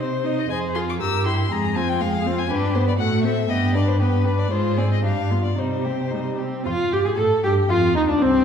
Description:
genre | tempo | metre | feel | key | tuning
quick classical-period movement for string quartet | 118 BPM | 2/4 | rubato | unclear | A4 = 440 Hz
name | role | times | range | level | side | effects
rich violin | melody | 0.0-8.4 s | C4 to E6 | -27 LUFS | left 8 dB | none
rich violin | second line | 0.0-8.4 s | C4 to Eb5 | -27 LUFS | left 3 dB | none
rich viola | accompaniment | 0.0-8.4 s | G3 to A4 | -23 LUFS | right 1 dB | none
rich cello | bass | 0.0-8.4 s | C2 to C3 | -23 LUFS | right 1 dB | none
room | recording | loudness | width
wet recital hall reverb, RT60 1.3 s | heard from further back in the room, faint mains hum | -19 LUFS | side -7 dB against mid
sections
0.0-6.7 A section; 6.7-8.4 A section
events
none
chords
0.5 Fm; 1.0 Edim/G; 1.5 Fm; 2.5 G; 3.0 F#dim/A; 3.5 G; 4.5 Fm/Ab; 5.0 G7; 5.6 Cm; 6.7 Fmadd9; 7.2 Gsus2; 7.7 Cm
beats
| 0.49 1.00 | 1.50 2.00 | 2.50 3.00 | 3.50 4.01 | 4.51 5.04 | 5.58 6.12 | 6.66 7.18 | 7.70 8.21

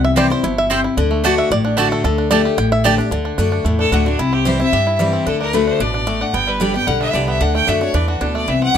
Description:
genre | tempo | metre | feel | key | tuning
bluegrass | 224 BPM | 4/4 | straight | D mixolydian | A4 = 441 Hz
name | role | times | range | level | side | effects
bluegrass banjo | melody | 0.0-8.8 s | D3 to G5 | -22 LUFS | right 2 dB | plate reverb
picked steel-string acoustic guitar | accompaniment | 0.0-8.8 s | G2 to G4 | -18 LUFS | left 3 dB | none
upright bass | bass | 0.0-8.8 s | G1 to G2 | -21 LUFS | right 1 dB | none
mandolin | stabs | 0.2-2.9 s | A3 to A5 | -18 LUFS | right 6 dB | none
bright fiddle | melody | 3.8-8.8 s | D4 to G5 | -19 LUFS | left 1 dB | plate reverb
room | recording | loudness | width
light reverb | close, detailed microphones | -14 LUFS | side -8 dB against mid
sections
0.0-3.1 A section; 3.1-8.8 B section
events
five-string banjo solo 0.0-3.1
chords
0.0 C; 1.0 D; 2.0 Dsus4; 3.1 D; 4.2 C; 5.3 D; 6.3 G; 7.4 D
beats
0.17 0.44 0.70 | 0.97 1.24 1.51 1.78 | 2.04 2.31 2.58 2.85 | 3.12 3.39 3.65 3.92 | 4.19 4.46 4.73 5.00 | 5.26 5.53 5.80 6.07 | 6.34 6.61 6.87 7.14 | 7.41 7.68 7.95 8.21 | 8.48 8.75

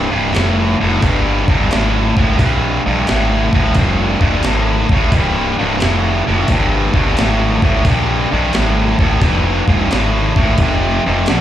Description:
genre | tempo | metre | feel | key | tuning
blues rock power trio and southern rock | 88 BPM | 4/4 | swing 67% on 8ths | unclear | A4 = 445 Hz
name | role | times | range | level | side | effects
tight distorted guitar | riff | 0.0-11.4 s | C2 to D3 | -15 LUFS | equal | distortion
fuzz fingered electric bass | bass | 0.0-11.4 s | C1 to Bb1 | -18 LUFS | equal | overdrive
breakbeat sampler-style drum kit | drums | 0.3-11.4 s | hi-hat, kick drum, snare drum | -17 LUFS | equal | none
room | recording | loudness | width
light reverb | live gig heard through the venue's PA, club reverb | -12 LUFS | side -11 dB against mid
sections
0.0-11.4 A section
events
none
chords
0.0 C5; 10.6 F5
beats
0.35 1.04 1.72 | 2.40 3.08 3.77 4.45 | 5.13 5.82 6.50 7.18 | 7.87 8.55 9.23 9.91 | 10.60 11.28

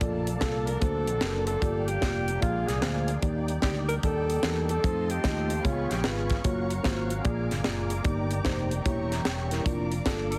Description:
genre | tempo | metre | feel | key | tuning
uptempo gospel | 149 BPM | 4/4 | swing 64% on 8ths | Bb major | A4 = 438 Hz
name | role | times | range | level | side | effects
mellow tine electric piano | accompaniment | 0.0-10.3 s | G2 to Bb5 | -34 LUFS | equal | none
tonewheel organ | sustained chords | 0.0-10.4 s | Eb3 to A4 | -40 LUFS | equal | fast rotary speaker, chorus vibrato
warm studio string section | sustained chords | 0.0-10.4 s | A4 to D6 | -43 LUFS | equal | none
fingered electric bass | bass | 0.0-10.4 s | E1 to F2 | -34 LUFS | equal | none
tight funk drum kit | drums | 0.0-10.4 s | hi-hat, kick drum, snare drum | -33 LUFS | equal | none
breathy alto saxophone | melody | 0.4-6.4, 10.1-10.4 s | F4 to Bb4 | -33 LUFS | equal | none
room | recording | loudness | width
light reverb | heavily compressed radio sound, multiband compression | -28 LUFS | mono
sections
0.0-10.4 A section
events
tine electric piano fill 8.9-9.7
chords
0.0 Bbmaj7; 0.8 D7b13; 1.6 Gm7; 2.4 Bb7; 3.2 Ebmaj7; 4.8 F7; 5.6 Db7; 6.4 Gbmaj7; 7.2 Bb7; 8.1 Ebmaj7/G; 8.9 Edim7; 9.7 Bb/F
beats
| 0.01 0.41 0.81 1.22 | 1.62 2.02 2.42 2.82 | 3.23 3.63 4.03 4.43 | 4.83 5.24 5.64 6.04 | 6.44 6.84 7.25 7.65 | 8.05 8.45 8.85 9.25 | 9.65 10.06

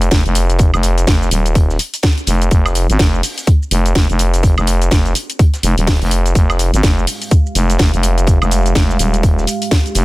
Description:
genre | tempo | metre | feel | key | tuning
bass house | 125 BPM | 4/4 | swing 60% on 16ths | F minor | A4 = 440 Hz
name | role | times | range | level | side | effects
growling FM bass | bass | 0.0-10.0 s | Eb1 to Ab1 | -14 LUFS | equal | tube saturation, sidechain pumping
crunchy breakbeat drum kit | drums | 0.0-10.0 s | hi-hat, snare drum | -32 LUFS | left 1 dB | none
garage drum kit | drums | 0.0-10.0 s | hi-hat, shaker, snare drum, woodblock | -19 LUFS | equal | none
electronic kick drum | drums | 0.1-9.8 s | none | -12 LUFS | equal | none
dark analog pad | sustained chords | 7.1-10.0 s | Ab3 to F5 | -24 LUFS | right 3 dB | chorus, sidechain pumping
room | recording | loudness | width
little or no reverb | dense, heavily limited modern master | -12 LUFS | side -20 dB against mid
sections
0.0-10.0 A section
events
none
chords
0.0 Fmadd9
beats
0.11 | 0.59 1.07 1.55 2.03 | 2.51 2.99 3.47 3.95 | 4.43 4.91 5.39 5.87 | 6.35 6.83 7.31 7.79 | 8.27 8.75 9.23 9.71

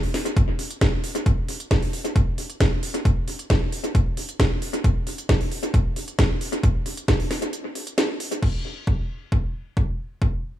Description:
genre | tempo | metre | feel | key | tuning
techno | 134 BPM | 4/4 | straight | none | none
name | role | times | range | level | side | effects
techno drum kit | drums | 0.0-8.5 s | crash cymbal, hi-hat, snare drum | -26 LUFS | equal | analog delay
electronic kick drum | drums | 0.4-10.3 s | none | -21 LUFS | equal | none
room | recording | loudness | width
light reverb | echo-heavy mix, small room ambience | -21 LUFS | side -13 dB against mid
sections
0.0-8.4 A section; 8.4-10.6 B section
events
drop 0.0-8.4; break 7.5-8.4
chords
none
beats
0.37 0.81 | 1.26 1.71 2.16 2.60 | 3.05 3.50 3.95 4.39 | 4.84 5.29 5.74 6.19 | 6.63 7.08 7.53 7.98 | 8.43 8.87 9.32 9.77 | 10.22

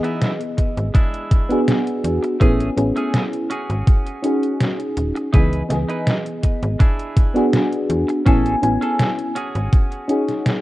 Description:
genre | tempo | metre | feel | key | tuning
vaporwave | 82 BPM | 4/4 | straight | C# minor | A4 = 441 Hz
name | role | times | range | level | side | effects
mellow FM electric piano | accompaniment | 0.0-10.6 s | E3 to G#5 | -20 LUFS | equal | lush chorus, cassette tape, tape echo
semi-hollow electric guitar | riff | 0.0-10.5 s | G#3 to B4 | -30 LUFS | right 2 dB | wide subtle chorus, tape echo
detuned 8-bit digital drum machine | drums | 0.0-10.6 s | hi-hat, snare drum | -22 LUFS | equal | overdrive, vintage 12-bit sampler grit
electronic kick drum | drums | 0.6-9.9 s | none | -15 LUFS | equal | overdrive, vintage 12-bit sampler grit
slap-like FM bass | bass | 0.8-9.7 s | D#1 to E2 | -22 LUFS | equal | none
room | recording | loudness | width
little or no reverb | rough home demo mix, cassette tape | -16 LUFS | side -16 dB against mid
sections
0.0-10.6 A section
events
none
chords
0.0 C#m9 (rootless); 0.9 E7; 2.4 Amaj7; 3.5 G#7sus4; 5.3 C#m9; 6.8 E7; 8.3 Amaj7; 9.4 G#7sus4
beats
0.21 0.95 1.68 | 2.41 3.14 3.87 4.61 | 5.34 6.07 6.80 7.53 | 8.26 9.00 9.73 10.46

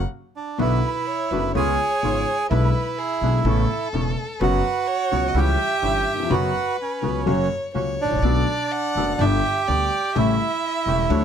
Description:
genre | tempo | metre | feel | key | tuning
tango | 126 BPM | 4/4 | rubato | B minor | A4 = 440 Hz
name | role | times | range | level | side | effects
upright bass | bass | 0.0-11.2 s | E1 to D2 | -24 LUFS | right 1 dB | none
bandoneon | melody | 0.4-11.2 s | C#4 to G#4 | -23 LUFS | right 5 dB | none
warm violin | second line | 0.6-11.2 s | G#4 to F#5 | -29 LUFS | left 2 dB | none
warm baby grand piano | accompaniment | 0.6-11.2 s | E1 to G4 | -24 LUFS | left 4 dB | none
bandoneon | stabs | 0.6-11.2 s | F#3 to A4 | -34 LUFS | right 5 dB | none
room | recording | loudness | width
little or no reverb | close, detailed microphones | -19 LUFS | side -8 dB against mid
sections
0.6-11.2 A section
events
band accent 0.0-0.6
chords
0.0 N.C.; 0.6 Bm; 1.6 C#7; 2.5 E7/B; 3.4 Aadd9; 4.4 F#sus4; 5.4 C#dim; 6.3 F#sus4; 7.3 F#; 8.2 Bm7; 9.2 G; 10.2 A7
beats
0.10 | 0.59 1.07 1.55 2.03 | 2.50 2.97 3.45 3.92 | 4.40 4.87 5.35 5.83 | 6.30 6.79 7.27 7.75 | 8.24 8.72 9.20 9.68 | 10.15 10.63 11.10

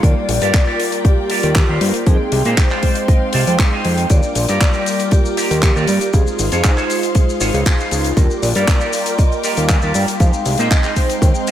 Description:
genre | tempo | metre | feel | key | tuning
nu-disco, nu disco | 118 BPM | 4/4 | straight | Eb major | A4 = 439 Hz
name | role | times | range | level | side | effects
vibraphone with medium mallets | melody | 0.0-11.5 s | G4 to G5 | -23 LUFS | left 1 dB | tape echo
mellow synth brass | accompaniment | 0.0-11.5 s | G3 to G5 | -22 LUFS | equal | chorus, phaser, sidechain pumping, diffuse ambient delay
warm symphonic string section | sustained chords | 0.0-11.5 s | Ab3 to D6 | -29 LUFS | left 2 dB | sidechain pumping
electric guitar with an envelope filter | riff | 0.0-11.5 s | Eb4 to G5 | -25 LUFS | right 2 dB | wide subtle chorus
fat analog bass | bass | 0.0-11.3 s | Ab1 to Bb2 | -18 LUFS | equal | tube saturation
damped 70s drum kit | drums | 0.0-11.5 s | handclaps, hi-hat, shaker | -22 LUFS | left 1 dB | none
electronic kick drum | drums | 0.0-11.3 s | none | -14 LUFS | equal | none
room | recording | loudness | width
light reverb, small room reverb | none | -13 LUFS | side -11 dB against mid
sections
0.0-11.5 A section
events
clean electric guitar fill 2.6-4.1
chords
0.0 Ebmaj7; 2.1 Fm7; 4.1 Ebmaj7; 6.1 Dbmaj7; 8.2 Ebmaj7; 10.2 Fm7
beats
| 0.03 0.54 1.05 1.56 | 2.07 2.58 3.08 3.59 | 4.10 4.61 5.12 5.63 | 6.13 6.64 7.15 7.66 | 8.17 8.68 9.19 9.69 | 10.20 10.71 11.22

